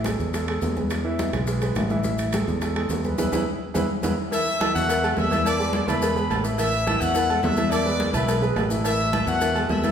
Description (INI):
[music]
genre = latin, salsa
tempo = 212 BPM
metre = 4/4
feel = straight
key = unclear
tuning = A4 = 439 Hz
[part]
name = fingered electric bass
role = bass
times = 0.0-9.9 s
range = A1 to E2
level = -26 LUFS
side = equal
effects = none
[part]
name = congas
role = percussion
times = 0.0-9.9 s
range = none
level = -30 LUFS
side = left 2 dB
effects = none
[part]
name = warm baby grand piano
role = accompaniment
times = 0.1-9.9 s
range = E3 to E5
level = -27 LUFS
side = right 2 dB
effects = none
[part]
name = bongos and cowbell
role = percussion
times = 0.1-9.9 s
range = none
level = -32 LUFS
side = left 4 dB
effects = none
[part]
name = maracas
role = percussion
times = 0.1-9.9 s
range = none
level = -38 LUFS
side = left 4 dB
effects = none
[part]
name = timbales and agogo bells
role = percussion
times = 0.1-9.9 s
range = none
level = -31 LUFS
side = right 4 dB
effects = none
[part]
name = brilliant trumpet section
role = melody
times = 4.3-9.9 s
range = F#4 to E6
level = -25 LUFS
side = left 1 dB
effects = none
[sound]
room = wet recital hall reverb, RT60 1.5 s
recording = recorded in a church or concert hall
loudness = -21 LUFS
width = side -8 dB against mid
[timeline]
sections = 0.0-4.3 A section; 4.3-9.9 B section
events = band accent 3.2-4.3; drum fill 3.8-4.3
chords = 0.0 A5; 3.2 E; 4.3 A5; 5.5 E7; 6.6 A5; 7.7 E7; 8.9 A5